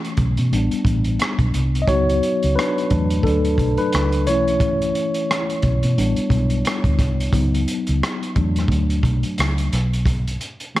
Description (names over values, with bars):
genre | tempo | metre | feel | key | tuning
R&B, neo-soul | 88 BPM | 4/4 | swing 59% on 16ths | unclear | A4 = 442 Hz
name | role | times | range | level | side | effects
mellow tine electric piano | accompaniment | 0.0-10.8 s | E3 to D#5 | -21 LUFS | left 1 dB | medium stereo tremolo
crunchy breakbeat drum kit | drums | 0.0-10.8 s | hi-hat, kick drum, rim click | -23 LUFS | equal | none
vintage muted fingered electric bass | bass | 0.2-10.4 s | A1 to B2 | -20 LUFS | equal | none
room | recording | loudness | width
light reverb, small room ambience | none | -17 LUFS | side -16 dB against mid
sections
0.0-10.8 A section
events
tine electric piano solo 0.0-10.8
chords
0.0 B9sus4; 0.5 A9sus4; 1.9 C#9sus4; 2.9 E9sus4; 4.3 B9sus4; 6.0 A9sus4; 7.3 C#9sus4; 8.3 E9sus4; 9.7 N.C.